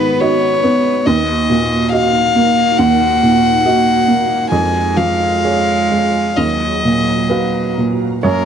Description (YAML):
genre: neoclassical piano and strings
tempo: 63-71 BPM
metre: 4/4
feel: rubato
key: Eb minor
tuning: A4 = 444 Hz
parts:
  - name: rich violin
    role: melody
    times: 0.0-8.4 s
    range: Bb4 to Ab5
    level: -15 LUFS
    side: left 4 dB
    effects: plate reverb
  - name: rich cello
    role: second line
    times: 0.0-8.4 s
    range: Gb3 to Cb4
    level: -20 LUFS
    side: right 7 dB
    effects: analog delay
  - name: clear upright piano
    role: accompaniment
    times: 0.0-8.4 s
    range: Eb2 to F5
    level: -16 LUFS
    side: right 2 dB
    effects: none
  - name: ethereal airy pad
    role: sustained chords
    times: 0.0-8.4 s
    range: Eb4 to Bb5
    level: -24 LUFS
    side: right 2 dB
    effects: ensemble chorus, built-in reverb, tremolo, plate reverb
room: moderate small room ambience, RT60 0.5 s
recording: nothing above 10.9 kHz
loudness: -12 LUFS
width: side -8 dB against mid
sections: 0.0-8.2 A section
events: none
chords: 0.0 Abm7; 1.1 Ebm; 4.5 Db/F; 6.4 Ebmadd9